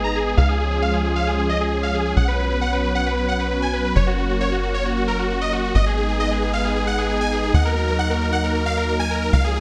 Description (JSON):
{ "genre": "trance", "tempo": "134 BPM", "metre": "4/4", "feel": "straight", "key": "Eb minor", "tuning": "A4 = 440 Hz", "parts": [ { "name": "supersaw chords", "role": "melody", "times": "0.0-9.6 s", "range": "Gb4 to Bb5", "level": "-25 LUFS", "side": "equal", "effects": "low-pass filter, delay" }, { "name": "lush unison pad", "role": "sustained chords", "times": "0.0-9.6 s", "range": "F3 to Eb4", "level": "-27 LUFS", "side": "equal", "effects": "chorus, vintage 12-bit sampler grit" }, { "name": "tight sequencer bass", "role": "bass", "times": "0.0-9.6 s", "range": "Gb1 to Eb2", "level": "-25 LUFS", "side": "equal", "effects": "none" } ], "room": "light reverb", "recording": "none", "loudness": "-21 LUFS", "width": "mono", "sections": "0.0-9.6 A section", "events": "filter sweep on analog synth pad 0.0-9.6", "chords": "0.4 Db; 2.2 Bsus2; 4.0 Gb; 5.7 Abm; 7.5 Ebm" }